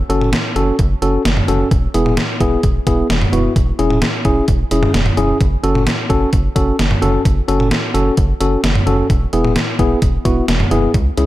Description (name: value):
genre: synth-pop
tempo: 130 BPM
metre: 4/4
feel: straight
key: F# minor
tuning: A4 = 440 Hz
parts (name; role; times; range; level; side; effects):
- rubbery square bass; bass; 0.0-11.3 s; E1 to C#2; -18 LUFS; equal; none
- tine electric piano; accompaniment; 0.1-11.3 s; B3 to A4; -18 LUFS; left 1 dB; medium stereo tremolo
- gated 80s digital drum machine; drums; 0.1-11.3 s; hi-hat, kick drum, snare drum, toms; -16 LUFS; equal; gated reverb, gated reverb snare, overdrive
room: light reverb, digital ambience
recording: none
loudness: -13 LUFS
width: side -16 dB against mid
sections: 0.0-11.3 A section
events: none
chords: 0.0 F#m; 1.7 E; 3.6 C#m/E; 5.4 F#m; 9.1 E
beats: 0.33 0.79 1.25 | 1.71 2.18 2.64 3.10 | 3.56 4.02 4.48 4.95 | 5.41 5.87 6.33 6.79 | 7.25 7.71 8.18 8.64 | 9.10 9.56 10.02 10.48 | 10.95